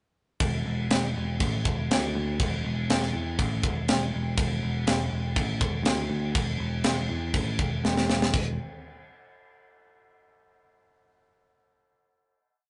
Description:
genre	heavy metal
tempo	121 BPM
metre	4/4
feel	straight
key	unclear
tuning	A4 = 442 Hz
part	picked electric bass	bass	0.4-8.6 s	E1 to E2	-32 LUFS	equal	none
part	tight metal drum kit	drums	0.4-8.5 s	crash cymbal, kick drum, snare drum	-29 LUFS	equal	none
room	light reverb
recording	rough rehearsal-room recording, warm saturation, nothing above 10.5 kHz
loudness	-27 LUFS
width	mono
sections	0.4-8.3 riff; 8.3-10.3 final note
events	drum fill 7.8-8.3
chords	none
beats	| 0.41 0.91 1.40 1.90 | 2.40 2.89 3.39 3.88 | 4.38 4.87 5.37 5.86 | 6.36 6.85 7.35 7.84 | 8.34

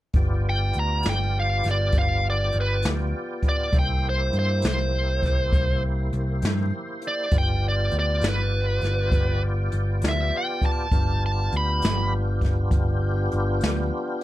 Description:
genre	slow blues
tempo	67 BPM (dotted quarters)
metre	12/8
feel	straight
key	G mixolydian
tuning	A4 = 440 Hz
part	picked electric bass	bass	0.1-13.9 s	G1 to G2	-24 LUFS	equal	none
part	jazz brush drum kit	drums	0.1-14.2 s	hi-hat, kick drum, snare drum	-25 LUFS	equal	none
part	tonewheel organ	sustained chords	0.2-14.2 s	Bb3 to D5	-31 LUFS	left 1 dB	slow rotary speaker, overdrive, chorus vibrato
part	smooth overdriven lead guitar	melody	0.5-12.1 s	B4 to B5	-26 LUFS	right 1 dB	none
room	little or no reverb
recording	dark, warm production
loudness	-21 LUFS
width	side -15 dB against mid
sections	0.1-14.2 A section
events	none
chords	0.1 G7; 3.7 C7; 7.3 G7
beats	| 0.15 1.05 1.94 2.84 | 3.74 4.64 5.53 6.43 | 7.33 8.23 9.12 10.02 | 10.92 11.82 12.72 13.62

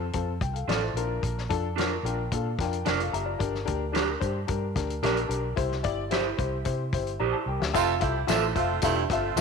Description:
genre	uptempo 1960s-style soul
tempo	110 BPM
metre	4/4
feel	straight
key	F major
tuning	A4 = 441 Hz
part	warm upright piano	accompaniment	0.0-9.4 s	C4 to Bb5	-30 LUFS	left 8 dB	none
part	vintage muted fingered electric bass	bass	0.0-9.4 s	Eb1 to C3	-31 LUFS	right 2 dB	none
part	warm soul drum kit	drums	0.1-9.4 s	hi-hat, kick drum, snare drum	-32 LUFS	left 3 dB	none
part	electric guitar through a small old amp	stabs	0.7-9.4 s	C4 to C5	-31 LUFS	right 13 dB	spring reverb
part	mellow horn section	second line	7.7-9.4 s	A3 to A4	-29 LUFS	right 12 dB	none
part	breathy baritone saxophone	riff	7.8-9.1 s	F2 to G2	-30 LUFS	right 10 dB	none
part	tambourine	percussion	7.8-9.4 s	none	-38 LUFS	left 10 dB	none
room	moderate echo chamber reverb, RT60 1.4 s, small room ambience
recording	1960s-style stereo with parts hard left and right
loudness	-25 LUFS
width	side -5 dB against mid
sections	0.0-7.7 A section; 7.7-9.4 B section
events	upright piano fill 1.8-3.4; drum fill 7.2-7.7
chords	0.0 F; 1.0 Bb; 3.4 Gm; 5.6 C; 7.7 Fmaj7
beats	0.14 0.68 | 1.23 1.77 2.31 2.86 | 3.40 3.95 4.49 5.03 | 5.58 6.12 6.66 7.20 | 7.75 8.29 8.83 9.37

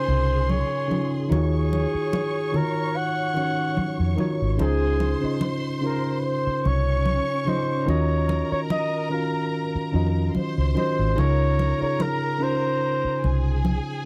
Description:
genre	lush 1970s-style soul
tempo	73 BPM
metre	4/4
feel	swing 54% on 16ths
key	Db major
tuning	A4 = 441 Hz
part	warm flugelhorn	melody	0.0-13.7 s	Ab4 to Gb5	-29 LUFS	equal	none
part	warm studio violin section	second line	0.0-14.1 s	Db4 to Db6	-36 LUFS	equal	none
part	mellow tine electric piano	accompaniment	0.0-14.1 s	Db3 to F5	-29 LUFS	equal	none
part	vintage muted fingered electric bass	bass	0.1-13.8 s	Ab1 to F2	-25 LUFS	equal	none
part	congas	percussion	0.5-13.9 s	none	-31 LUFS	equal	none
room	little or no reverb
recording	dry, close 1970s-style studio recording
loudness	-24 LUFS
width	mono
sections	0.0-14.1 A section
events	none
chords	0.0 Dbmaj7; 1.3 Ebm9; 4.6 Dbmaj7; 7.9 Ebm9; 11.2 Dbmaj7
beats	0.49 | 1.31 2.13 2.95 3.77 | 4.59 5.41 6.24 7.06 | 7.88 8.70 9.53 10.35 | 11.18 12.00 12.82 13.65

